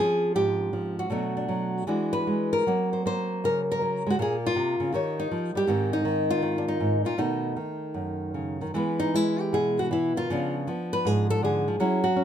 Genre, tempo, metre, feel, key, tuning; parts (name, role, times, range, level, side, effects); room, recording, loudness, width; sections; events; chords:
solo jazz; 158 BPM; 4/4; swing 66% on 8ths, rubato; A4 = 440 Hz
nylon-string guitar; solo; 0.0-12.2 s; F#2 to Db5; -24 LUFS; equal
little or no reverb; close, detailed microphones; -24 LUFS; side -9 dB against mid
0.0-8.7 A section; 8.7-12.2 B section
nylon-string guitar solo 8.7-12.2
0.0 Dbmaj7; 1.1 Bm7; 1.9 E9; 2.7 Gb; 4.2 Bbmadd9; 4.9 Eb7; 5.7 Ab; 7.2 B9; 8.7 Emaj7; 10.3 C#7b9